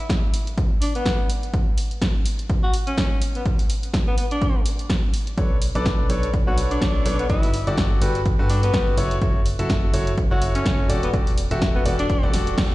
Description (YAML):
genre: piano house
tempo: 125 BPM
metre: 4/4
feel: swing 56% on 16ths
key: B minor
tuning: A4 = 439 Hz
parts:
  - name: breathy alto saxophone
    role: melody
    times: 0.0-12.3 s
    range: B3 to F#4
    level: -28 LUFS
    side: left 1 dB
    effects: vintage 12-bit sampler grit, tape echo
  - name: electronic kick drum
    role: drums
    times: 0.1-12.7 s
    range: none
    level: -22 LUFS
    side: equal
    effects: none
  - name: punchy analog drum machine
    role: drums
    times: 0.1-12.7 s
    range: hi-hat, snare drum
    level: -29 LUFS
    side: equal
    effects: none
  - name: bright grand piano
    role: riff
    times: 5.4-12.7 s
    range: D4 to E5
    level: -26 LUFS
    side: equal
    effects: sidechain pumping, tape echo
  - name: solid FM bass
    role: bass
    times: 5.4-12.7 s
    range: E1 to G2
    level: -24 LUFS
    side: equal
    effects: sidechain pumping
room: digital ambience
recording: played on a big sound system in a bare room, stone room reverb, nothing above 10.8 kHz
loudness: -19 LUFS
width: side -18 dB against mid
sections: 0.0-12.7 A section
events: band accent 12.6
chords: 0.0 N.C.; 5.4 Bm9; 7.3 Gmaj9; 9.0 F#m7; 10.9 Em11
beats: 0.10 0.58 1.06 | 1.54 2.02 2.50 2.98 | 3.46 3.94 4.42 4.90 | 5.38 5.86 6.34 6.82 | 7.30 7.78 8.26 8.74 | 9.22 9.70 10.18 10.66 | 11.14 11.62 12.10 12.58